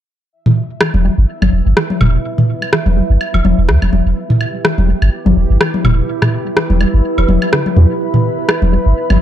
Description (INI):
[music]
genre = minimal techno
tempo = 125 BPM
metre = 4/4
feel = swing 56% on 16ths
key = E minor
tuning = A4 = 440 Hz
[part]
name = bubbling stepped-filter texture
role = texture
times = 0.6-9.2 s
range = E4 to E5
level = -27 LUFS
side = right 6 dB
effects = chorus, built-in reverb
[part]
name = deep dark ambient pad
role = texture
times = 1.6-9.2 s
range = E4 to B5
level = -23 LUFS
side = equal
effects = chorus, built-in reverb
[part]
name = resonant blip pluck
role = riff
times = 0.5-9.1 s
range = B2 to G3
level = -22 LUFS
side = equal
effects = phaser, wide subtle chorus, tape echo
[part]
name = electronic toms and woodblock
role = percussion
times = 0.5-9.2 s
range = none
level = -16 LUFS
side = left 2 dB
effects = overdrive
[part]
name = electronic rim click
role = drums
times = 0.8-8.6 s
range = none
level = -16 LUFS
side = equal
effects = none
[part]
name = punchy sub bass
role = bass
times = 0.9-9.2 s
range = E1 to E2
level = -11 LUFS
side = equal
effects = none
[sound]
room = little or no reverb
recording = dark, warm production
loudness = -11 LUFS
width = side -11 dB against mid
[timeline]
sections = 0.3-9.2 A section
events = none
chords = 0.3 E5